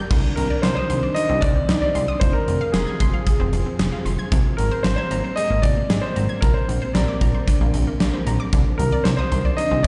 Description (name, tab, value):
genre	synth-pop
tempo	114 BPM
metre	4/4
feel	straight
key	C minor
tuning	A4 = 440 Hz
part	soft string machine	sustained chords	0.0-9.9 s	D3 to Ab4	-32 LUFS	equal	ensemble chorus
part	analog pluck	arpeggios	0.0-9.9 s	C3 to Ab6	-33 LUFS	equal	chorus, digital delay
part	chorused synth bass	bass	0.1-9.9 s	F1 to C2	-25 LUFS	equal	none
part	huge arena drum kit	drums	0.1-9.9 s	crash cymbal, hi-hat, kick drum, snare drum	-24 LUFS	equal	none
part	warm concert grand piano	melody	0.4-9.9 s	Ab4 to Eb5	-27 LUFS	equal	digital delay
room	light reverb, small room ambience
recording	played on a big sound system in a bare room, large studio reverb, nothing above 10.4 kHz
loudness	-20 LUFS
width	mono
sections	0.1-9.9 A section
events	none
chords	0.1 Cmadd9; 2.2 Fm; 4.3 Abadd9; 6.4 Bbadd9; 8.5 Cmadd9